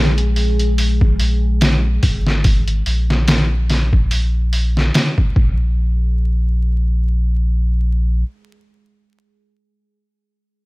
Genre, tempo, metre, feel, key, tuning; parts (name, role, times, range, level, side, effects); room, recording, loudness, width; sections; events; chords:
trip hop; 72 BPM; 4/4; swing 56% on 16ths; A4 = 440 Hz
deep dark ambient pad; sustained chords; 0.0-5.4 s; Ab4; -28 LUFS; left 2 dB; chorus, built-in reverb
warm sub bass; bass; 0.0-8.2 s; Ab1 to Bb1; -16 LUFS; equal
trip hop sampler-style drum kit; drums; 0.2-5.5 s; hi-hat, kick drum, snare drum; -16 LUFS; equal; overdrive, studio reverb
little or no reverb; vinyl crackle; -14 LUFS; side -22 dB against mid
0.0-5.8 A section; 5.8-9.1 B section
filter sweep on sub bass 0.0-5.8; filter sweep on ambient pad 0.0-5.8
0.0 Absus2; 5.4 N.C.